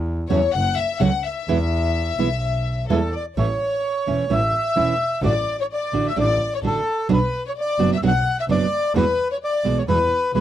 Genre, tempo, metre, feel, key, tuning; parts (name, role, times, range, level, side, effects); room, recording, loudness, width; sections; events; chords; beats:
tango; 129 BPM; 4/4; rubato; A major; A4 = 444 Hz
clear double bass; bass; 0.0-10.4 s; E1 to E2; -24 LUFS; equal
warm studio violin section; second line; 0.3-10.4 s; A4 to F#5; -26 LUFS; left 8 dB
nylon-string guitar; accompaniment; 0.3-10.4 s; B2 to F#4; -21 LUFS; right 5 dB
bandoneon; melody; 2.9-10.4 s; A4 to F#5; -22 LUFS; equal; slapback echo
little or no reverb; dry, close 1970s-style studio recording; -18 LUFS; side -11 dB against mid
0.0-3.4 A section; 3.4-10.4 B section
violin section solo 0.0-3.4
0.0 A/E; 0.5 F#5; 1.5 E; 3.4 A; 5.2 D/A; 7.1 Bm; 8.9 Eadd9
0.07 0.54 1.00 | 1.47 1.94 2.41 2.89 | 3.36 3.83 4.29 4.76 | 5.23 5.69 6.16 6.62 | 7.09 7.55 8.02 8.48 | 8.94 9.41 9.87 10.34